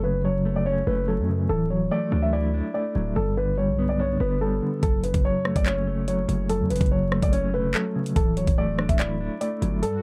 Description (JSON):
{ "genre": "hip hop, drill", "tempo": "144 BPM", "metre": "4/4", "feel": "half-time", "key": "F# phrygian", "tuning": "A4 = 440 Hz", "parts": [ { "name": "dark concert grand piano", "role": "melody", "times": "0.0-10.0 s", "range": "A4 to E5", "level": "-30 LUFS", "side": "equal", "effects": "low-pass filter, analog delay" }, { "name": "mellow electric guitar", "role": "accompaniment", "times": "0.0-10.0 s", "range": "F#2 to E4", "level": "-28 LUFS", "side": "equal", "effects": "tremolo, low-pass filter" }, { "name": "distorted 808-style bass", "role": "bass", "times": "0.0-9.8 s", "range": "D1 to F#2", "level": "-30 LUFS", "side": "equal", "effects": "distortion" }, { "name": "drill drum kit", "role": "drums", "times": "4.8-9.9 s", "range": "handclaps, hi-hat, kick drum, rim click", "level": "-26 LUFS", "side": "equal", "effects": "none" }, { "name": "swell", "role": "sound effects", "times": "10.0 s", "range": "none", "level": "-46 LUFS", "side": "equal", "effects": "none" } ], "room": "little or no reverb", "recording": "dark, warm production, vinyl crackle", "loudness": "-24 LUFS", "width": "mono", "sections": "0.0-10.0 A section", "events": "kick muted 9.8; swell 10.0", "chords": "0.0 F#m; 1.5 Dadd9; 3.2 G; 4.8 F#m; 8.2 Dadd9" }